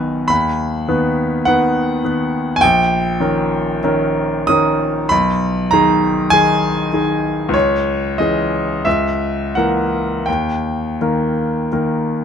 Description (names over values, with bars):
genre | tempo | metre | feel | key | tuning
classical, romantic nocturne for solo piano | 41-52 BPM | 4/4 | rubato | unclear | A4 = 441 Hz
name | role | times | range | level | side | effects
bright grand piano | solo | 0.0-12.2 s | A#1 to D#6 | -14 LUFS | equal | none
room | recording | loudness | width
little or no reverb | close, detailed microphones | -14 LUFS | side -8 dB against mid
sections
0.0-12.2 A section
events
none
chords
0.3 B/D#; 2.6 D#7/A#; 5.1 G#m/B; 7.5 C#m; 8.9 A#dim/C#; 10.3 D#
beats
0.31 1.47 | 2.62 3.83 5.12 6.32 | 7.54 8.86 10.27 11.70